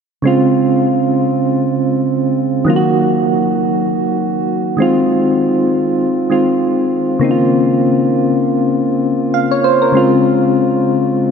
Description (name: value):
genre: afrobeats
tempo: 99 BPM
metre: 4/4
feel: swing 58% on 16ths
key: Db major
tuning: A4 = 440 Hz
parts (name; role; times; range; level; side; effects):
- soft electric-piano-like synth keys; solo; 0.2-11.3 s; Db3 to F5; -12 LUFS; equal; chorus, tremolo
room: wet cathedral reverb, RT60 5.0 s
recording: dreamy mix soaked in reverb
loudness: -12 LUFS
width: side -6 dB against mid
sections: 0.2-9.9 A section; 9.9-11.3 B section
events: none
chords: 0.2 Dbmaj7; 2.7 Ebm; 4.8 Ab6; 7.2 Bbmadd9; 9.9 Dbmaj7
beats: | 0.25 0.85 1.46 2.07 | 2.67 3.28 3.88 4.49 | 5.10 5.70 6.31 6.92 | 7.52 8.13 8.73 9.34 | 9.95 10.55 11.16